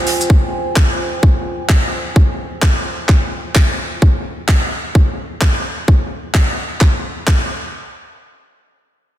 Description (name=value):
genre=bass house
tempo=129 BPM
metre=4/4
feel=swing 61% on 16ths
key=F minor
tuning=A4 = 439 Hz
part: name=dark analog pad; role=sustained chords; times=0.0-4.0 s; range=F4 to Ab5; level=-25 LUFS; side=right 2 dB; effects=chorus, sidechain pumping
part: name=garage drum kit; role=drums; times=0.1-7.4 s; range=handclaps, hi-hat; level=-21 LUFS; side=equal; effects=soft clipping on snare
part: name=electronic kick drum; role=drums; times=0.3-7.4 s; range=none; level=-14 LUFS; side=equal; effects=none
room=light reverb, studio ambience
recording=dense, heavily limited modern master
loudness=-13 LUFS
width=side -12 dB against mid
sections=0.0-7.7 A section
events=none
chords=0.0 Fmadd9